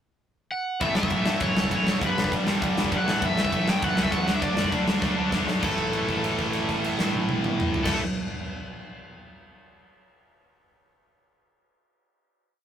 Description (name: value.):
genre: punk rock.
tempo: 199 BPM.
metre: 4/4.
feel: straight.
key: unclear.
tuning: A4 = 440 Hz.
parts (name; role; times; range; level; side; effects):
overdriven semi-hollow guitar; melody; 0.5-8.0 s; A4 to G5; -29 LUFS; equal; none.
tight distorted guitar; riff; 0.8-8.0 s; G2 to D4; -31 LUFS; left 7 dB; distortion.
tight distorted guitar; riff; 0.8-8.0 s; G2 to D4; -32 LUFS; right 6 dB; distortion.
tight distorted guitar; riff; 0.8-8.0 s; G2 to D4; -30 LUFS; right 1 dB; distortion.
growling picked electric bass; bass; 0.8-8.0 s; F#1 to G2; -37 LUFS; equal; none.
big rock drum kit; drums; 0.8-7.9 s; crash cymbal, kick drum, ride cymbal, snare drum, toms; -26 LUFS; equal; none.
room: light reverb.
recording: rough rehearsal-room recording.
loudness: -22 LUFS.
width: side -9 dB against mid.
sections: 0.0-0.8 pickup bar; 0.8-5.6 riff; 5.6-8.0 final chord.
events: drum fill 5.0-5.6; held note 5.6-7.9.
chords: 0.0 N.C.; 0.8 A; 2.0 G; 3.1 A; 4.3 D5; 5.6 A5.